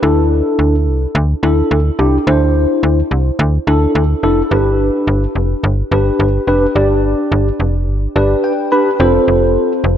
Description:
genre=synth-pop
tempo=107 BPM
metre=4/4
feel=straight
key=G mixolydian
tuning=A4 = 441 Hz
part: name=tine electric piano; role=accompaniment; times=0.0-9.7 s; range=C4 to B5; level=-14 LUFS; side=equal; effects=analog chorus
part: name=slap-like FM bass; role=bass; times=0.0-10.0 s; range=F1 to D2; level=-14 LUFS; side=equal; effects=none
room=wet lush hall reverb, RT60 2.8 s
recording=dreamy mix soaked in reverb, nothing above 11.0 kHz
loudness=-12 LUFS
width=side -9 dB against mid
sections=0.0-9.0 A section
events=tine electric piano fill 7.9-9.0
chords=0.0 Dsus2; 4.5 G; 9.0 F

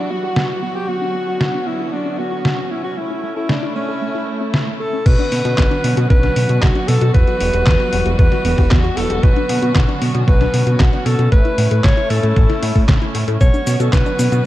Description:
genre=italo disco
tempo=115 BPM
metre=4/4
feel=straight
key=B minor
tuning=A4 = 440 Hz
part: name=breathy alto saxophone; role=melody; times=0.0-14.4 s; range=C#4 to C#5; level=-21 LUFS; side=equal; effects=ping-pong delay
part: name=dark chamber string section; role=sustained chords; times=0.0-14.5 s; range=D3 to F#4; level=-24 LUFS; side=right 1 dB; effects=none
part: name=warbly dusty pluck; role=arpeggios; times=0.0-14.4 s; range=A3 to C#5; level=-26 LUFS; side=left 2 dB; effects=chorus, tape echo
part: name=detuned 8-bit digital drum machine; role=drums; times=0.4-14.4 s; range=cabasa, crash cymbal, handclaps, hi-hat, snare drum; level=-22 LUFS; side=equal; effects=small room ambience
part: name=fat analog bass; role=bass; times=5.1-14.4 s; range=E1 to B2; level=-17 LUFS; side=equal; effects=none
part: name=electronic kick drum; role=drums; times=5.1-14.0 s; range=none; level=-14 LUFS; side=equal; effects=small room ambience
room=light reverb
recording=dark, warm production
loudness=-14 LUFS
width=side -15 dB against mid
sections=0.0-5.1 A section; 5.1-14.5 B section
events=none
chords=0.0 Emadd9; 0.9 Bmadd9; 3.0 A; 5.1 Bmadd9; 7.1 Emadd9; 9.2 Bmadd9; 11.3 A; 13.4 Bmadd9

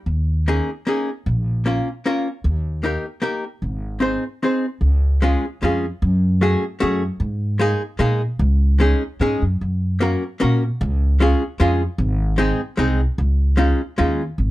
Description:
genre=musette waltz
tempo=151 BPM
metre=3/4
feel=swing 53% on 8ths, rubato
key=Ab major, Db major from 4.8 s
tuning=A4 = 440 Hz
part: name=upright bass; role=bass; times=0.1-14.5 s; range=Ab1 to Bb2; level=-18 LUFS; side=equal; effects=none
part: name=archtop guitar, miked and amplified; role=accompaniment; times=0.5-14.2 s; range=Ab3 to C5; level=-20 LUFS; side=left 1 dB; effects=none
room=light reverb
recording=dark, warm production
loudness=-18 LUFS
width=side -16 dB against mid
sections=0.0-4.8 A section; 4.8-14.4 B section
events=none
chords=0.1 Eb7sus4; 1.3 Bbm; 2.5 Eb; 3.6 Ab; 4.8 Db; 6.0 Gbmadd9; 7.2 Absus2; 8.4 Dbsus2; 9.6 Gb; 10.8 Db; 12.0 Ab; 13.2 Dbadd9

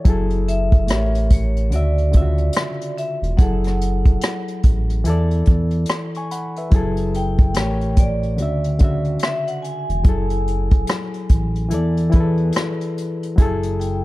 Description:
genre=lo-fi hip hop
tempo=72 BPM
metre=4/4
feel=swing 62% on 16ths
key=F# minor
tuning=A4 = 440 Hz
part: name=bright reed electric piano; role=accompaniment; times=0.0-14.0 s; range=C#3 to C#6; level=-24 LUFS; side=left 2 dB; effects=overdrive, cassette tape, low-pass filter
part: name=vintage brush drum kit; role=drums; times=0.0-14.0 s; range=hi-hat, kick drum, rim click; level=-16 LUFS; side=equal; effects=none
part: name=smooth gliding synth bass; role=bass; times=0.1-14.0 s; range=E1 to E2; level=-20 LUFS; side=equal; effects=none
part: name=vibraphone with medium mallets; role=melody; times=0.5-14.0 s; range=C#5 to G#5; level=-28 LUFS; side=equal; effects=low-pass filter, tape echo
room=little or no reverb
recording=dark, warm production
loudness=-16 LUFS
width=side -18 dB against mid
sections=0.0-14.0 A section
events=none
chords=0.0 F#m9; 0.9 A7b9; 1.7 Dmaj9; 3.4 F#m9; 5.0 E7sus4; 6.7 F#m9; 7.5 A7b9; 8.4 Dmaj9; 10.0 F#m9; 11.7 E7sus4; 13.4 F#m9

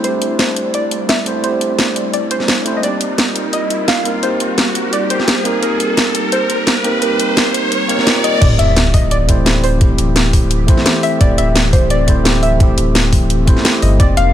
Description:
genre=liquid drum and bass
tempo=172 BPM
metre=4/4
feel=straight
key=unclear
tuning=A4 = 440 Hz
part: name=soft round pluck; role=melody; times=0.0-14.3 s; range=Bb4 to F5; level=-20 LUFS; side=equal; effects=chorus, ping-pong delay
part: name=tine electric piano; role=accompaniment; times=0.0-14.3 s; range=A3 to C5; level=-20 LUFS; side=right 1 dB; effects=dub echo
part: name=airy breathy pad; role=sustained chords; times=0.0-14.3 s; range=E3 to D5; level=-24 LUFS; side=left 1 dB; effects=chorus
part: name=garage drum kit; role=drums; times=0.0-14.2 s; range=crash cymbal, hi-hat, snare drum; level=-17 LUFS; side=equal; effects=studio reverb
part: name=riser and sub drop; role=sound effects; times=0.1-9.8 s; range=none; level=-21 LUFS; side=equal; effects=none
part: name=warm sub bass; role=bass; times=8.4-14.3 s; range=D1 to G1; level=-15 LUFS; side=equal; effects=tube saturation
part: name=electronic kick drum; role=drums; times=8.4-14.1 s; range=none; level=-12 LUFS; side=equal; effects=studio reverb
room=light reverb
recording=none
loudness=-12 LUFS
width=side -11 dB against mid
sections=0.0-8.4 A section; 8.4-14.3 B section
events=build-up 0.0-8.4; riser 0.1-8.4; drop 8.4-14.3; impact 8.4-9.8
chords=0.0 D9sus4; 2.8 F9sus4; 8.4 D9sus4

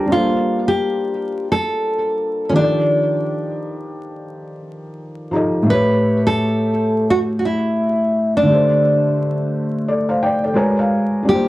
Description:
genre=hip hop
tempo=86 BPM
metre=4/4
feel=swing 60% on 16ths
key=G minor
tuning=A4 = 440 Hz
part: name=felt-muted upright piano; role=accompaniment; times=0.0-11.5 s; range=A2 to Ab5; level=-18 LUFS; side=equal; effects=cassette tape
part: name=nylon-string guitar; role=melody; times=0.1-11.5 s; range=C#4 to B4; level=-18 LUFS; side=equal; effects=none
room=wet studio ambience, RT60 0.5 s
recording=worn, warbling old tape, cassette tape, vinyl crackle, warbly pitch drift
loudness=-15 LUFS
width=side -17 dB against mid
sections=0.1-11.5 A section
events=none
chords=0.1 Gm11; 2.6 F13; 5.7 A7; 8.5 D7sus4; 10.6 Abm11

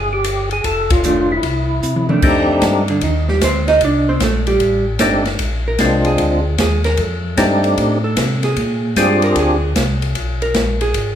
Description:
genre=soul jazz organ trio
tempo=152 BPM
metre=4/4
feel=swing 66% on 8ths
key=F mixolydian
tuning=A4 = 439 Hz
part: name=percussive tonewheel organ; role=melody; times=0.0-9.6 s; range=Ab3 to A4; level=-16 LUFS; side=left 1 dB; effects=slow rotary speaker, chorus vibrato
part: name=mellow tonewheel organ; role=bass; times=0.0-11.2 s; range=F1 to C3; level=-19 LUFS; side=equal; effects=chorus vibrato, slow rotary speaker
part: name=open jazz drum kit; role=drums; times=0.2-11.1 s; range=crash cymbal, hi-hat, kick drum, ride cymbal, snare drum, toms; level=-20 LUFS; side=left 1 dB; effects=none
part: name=vintage hollow-body jazz guitar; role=accompaniment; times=1.0-11.2 s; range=D3 to Eb5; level=-19 LUFS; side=right 3 dB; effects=none
room=moderate recital hall reverb, RT60 1.5 s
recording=recorded in a church or concert hall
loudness=-14 LUFS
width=side -9 dB against mid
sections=0.0-2.2 A section; 2.2-11.2 B section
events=band accent 0.8; drum fill 1.8-2.2; hollow-body jazz guitar solo 2.2-11.2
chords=0.0 N.C.; 0.7 F6; 1.4 C69; 2.2 F13; 5.4 Bb9; 7.0 F13; 8.6 Bb13; 10.2 Bb7(no3)

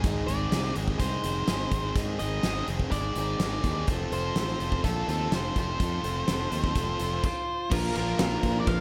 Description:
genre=classic rock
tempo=125 BPM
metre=4/4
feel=straight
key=unclear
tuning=A4 = 439 Hz
part: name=cranked stack guitar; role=riff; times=0.0-8.8 s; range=Ab2 to A4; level=-37 LUFS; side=equal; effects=overdrive
part: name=raw garage guitar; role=riff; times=0.0-8.8 s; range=Ab2 to A4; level=-39 LUFS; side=equal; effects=overdrive
part: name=growling fingered electric bass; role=bass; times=0.0-8.8 s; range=F1 to Bb2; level=-34 LUFS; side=equal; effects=overdrive
part: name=big rock drum kit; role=drums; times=0.0-8.8 s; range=crash cymbal, hi-hat, kick drum, ride cymbal, snare drum, splash cymbal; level=-32 LUFS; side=equal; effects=none
part: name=octave-fuzz lead guitar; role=melody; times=0.3-8.8 s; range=A4 to F5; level=-35 LUFS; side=equal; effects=distortion
part: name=lightly driven lead guitar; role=second line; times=7.3-8.8 s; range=F4 to Bb4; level=-38 LUFS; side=equal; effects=none
part: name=dark upright piano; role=accompaniment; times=7.7-8.8 s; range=D4 to Bb4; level=-39 LUFS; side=equal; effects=none
part: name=cranked stack guitar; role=riff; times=7.7-8.8 s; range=Bb2 to Bb3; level=-37 LUFS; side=equal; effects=none
part: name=group handclap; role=percussion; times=8.0-8.3 s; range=none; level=barely audible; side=none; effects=none
room=light reverb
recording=none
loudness=-28 LUFS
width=mono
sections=0.0-7.7 A section; 7.7-8.8 B section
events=none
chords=0.0 Ab; 3.9 F; 7.7 Bb

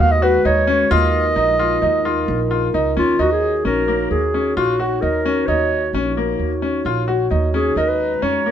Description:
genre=contemporary instrumental, chamber music in an uneven meter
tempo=131 BPM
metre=5/4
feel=straight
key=Eb minor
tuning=A4 = 442 Hz
part: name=mellow clarinet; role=melody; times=0.0-8.5 s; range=F4 to F5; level=-19 LUFS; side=equal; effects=none
part: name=glass harmonica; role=sustained chords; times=0.0-8.5 s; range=Ab3 to Bb5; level=-24 LUFS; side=equal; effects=none
part: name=bright grand piano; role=arpeggios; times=0.0-8.5 s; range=Bb3 to Gb4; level=-20 LUFS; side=left 2 dB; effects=none
part: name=upright bass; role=bass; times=0.0-8.5 s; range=Bb1 to F2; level=-22 LUFS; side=right 2 dB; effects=none
room=moderate studio reverb, RT60 0.8 s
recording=minimal, uncompressed stereo recording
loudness=-15 LUFS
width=side -9 dB against mid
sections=0.0-3.2 A section; 3.2-8.5 B section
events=none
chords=0.0 Abm7/Eb; 0.9 Ebsus2; 3.2 Ebm7; 7.8 Bbm7/Eb

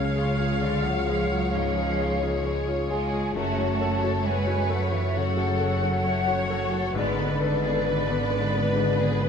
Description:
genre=cinematic, emotional film score for orchestra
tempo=66 BPM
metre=4/4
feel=rubato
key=F# minor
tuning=A4 = 440 Hz
part: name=warm studio violin section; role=melody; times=0.0-9.3 s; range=B4 to C#5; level=-32 LUFS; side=left 5 dB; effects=none
part: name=flute section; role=second line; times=0.0-9.3 s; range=C#5 to A5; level=-30 LUFS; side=left 1 dB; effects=none
part: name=warm studio violin section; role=second line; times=0.0-9.3 s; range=G#3 to A4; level=-37 LUFS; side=left 3 dB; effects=none
part: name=felt-muted upright piano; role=accompaniment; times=0.0-9.3 s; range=C#2 to E#5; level=-31 LUFS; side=left 2 dB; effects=none
part: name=rich studio viola section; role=accompaniment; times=0.0-9.3 s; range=F#4 to E#5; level=-34 LUFS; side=right 2 dB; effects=none
part: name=concert harp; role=arpeggios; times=0.0-9.3 s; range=F#2 to F#5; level=-32 LUFS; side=left 8 dB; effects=none
part: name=rich studio double bass section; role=bass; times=0.0-9.3 s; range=F#1 to C#2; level=-28 LUFS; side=right 2 dB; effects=none
part: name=warm studio cello section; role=bass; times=0.0-9.3 s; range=C#3 to A3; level=-30 LUFS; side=right 2 dB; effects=none
room=moderate scoring stage reverb, RT60 1.4 s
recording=dark, warm production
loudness=-22 LUFS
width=side -6 dB against mid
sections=0.0-9.3 A section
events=none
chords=0.0 C#; 3.3 F#m; 7.0 G#dim

